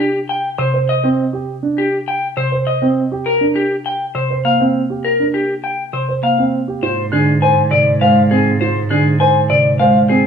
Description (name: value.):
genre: classical, minimalist pattern music.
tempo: 101 BPM.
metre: 3/4.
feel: straight.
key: Ab lydian.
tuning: A4 = 443 Hz.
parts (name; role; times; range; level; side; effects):
electric guitar through a small old amp; melody; 0.0-10.3 s; G4 to Ab5; -16 LUFS; left 3 dB; none.
dark baby grand piano; arpeggios; 0.0-10.3 s; C4 to C5; -18 LUFS; right 5 dB; none.
marimba with medium mallets; accompaniment; 0.6-10.0 s; C3 to Bb3; -19 LUFS; right 1 dB; none.
warm cello; bass; 6.8-10.2 s; Ab2; -20 LUFS; right 4 dB; none.
room: wet large studio reverb, RT60 1.2 s.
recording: none.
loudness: -13 LUFS.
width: side -7 dB against mid.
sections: 0.0-6.8 A section; 6.8-10.3 A section.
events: none.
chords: 0.0 C5; 3.3 Gm; 6.8 Ab.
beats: 0.29 0.89 | 1.48 2.08 2.67 | 3.26 3.86 4.45 | 5.05 5.64 6.23 | 6.83 7.42 8.02 | 8.61 9.20 9.80.